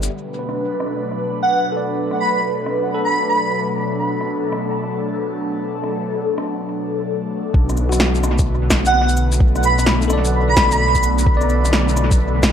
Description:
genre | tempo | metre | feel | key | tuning
future garage | 129 BPM | 4/4 | swing 65% on 16ths | B minor | A4 = 439 Hz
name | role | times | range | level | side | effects
bell-like tine electric piano | accompaniment | 0.0-12.5 s | F#4 to D5 | -27 LUFS | left 2 dB | medium stereo tremolo, sidechain pumping, low-pass filter, tape echo
airy breathy pad | sustained chords | 0.0-12.5 s | B2 to B4 | -22 LUFS | equal | chorus, phaser, vintage 12-bit sampler grit, sidechain pumping
dark detuned saw bass | bass | 0.0-0.1, 7.5-12.5 s | B1 | -18 LUFS | equal | sidechain pumping
electronic cabasa, shaker, rim click and snare drum | drums | 0.0-12.5 s | none | -22 LUFS | equal | low-pass filter on perc, low-pass filter on snare, low-pass filter on room, analog delay
airy dreamy lead | melody | 1.4-3.6, 8.9-11.0 s | F#5 to B5 | -20 LUFS | right 2 dB | chorus, cassette tape, analog delay
electronic kick drum | drums | 7.5-12.5 s | none | -17 LUFS | equal | overdrive
room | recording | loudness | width
light reverb | echo-heavy mix | -16 LUFS | side -8 dB against mid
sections
0.1-7.5 A section; 7.5-12.5 B section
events
filter sweep on tine electric piano 0.1-7.5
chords
0.1 Bm7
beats
| 0.10 0.57 1.03 1.50 | 1.96 2.43 2.89 3.36 | 3.82 4.29 4.75 5.22 | 5.68 6.15 6.61 7.08 | 7.54 8.01 8.47 8.94 | 9.40 9.87 10.34 10.80 | 11.27 11.73 12.20

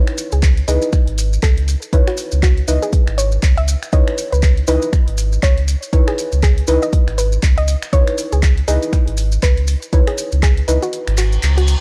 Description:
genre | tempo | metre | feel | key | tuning
deep house | 120 BPM | 4/4 | swing 58% on 16ths | C# minor | A4 = 438 Hz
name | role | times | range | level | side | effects
soft round pluck | melody | 0.0-11.8 s | F#4 to E5 | -27 LUFS | equal | chorus
deep mellow chord stab | stabs | 0.0-11.8 s | D#4 to D#5 | -24 LUFS | equal | chorus, sidechain pumping
sub bass with octave | bass | 0.0-11.8 s | G#1 to C#2 | -19 LUFS | equal | sidechain pumping
punchy analog drum machine | drums | 0.1-11.8 s | finger snaps, handclaps, hi-hat | -30 LUFS | equal | none
maracas | percussion | 0.2-11.8 s | none | -30 LUFS | equal | none
electronic kick drum | drums | 0.4-10.5 s | none | -16 LUFS | equal | none
reverse cymbal | sound effects | 11.1-11.8 s | none | -30 LUFS | equal | none
room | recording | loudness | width
little or no reverb | dry, gritty hardware recording | -16 LUFS | mono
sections
0.0-11.8 A section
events
kick drops out 10.9-11.8; reverse cymbal 11.1-11.8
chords
0.0 C#m9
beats
0.43 0.93 1.43 | 1.93 2.43 2.93 3.43 | 3.93 4.43 4.93 5.43 | 5.93 6.43 6.93 7.43 | 7.93 8.43 8.93 9.43 | 9.93 10.43 10.93 11.43

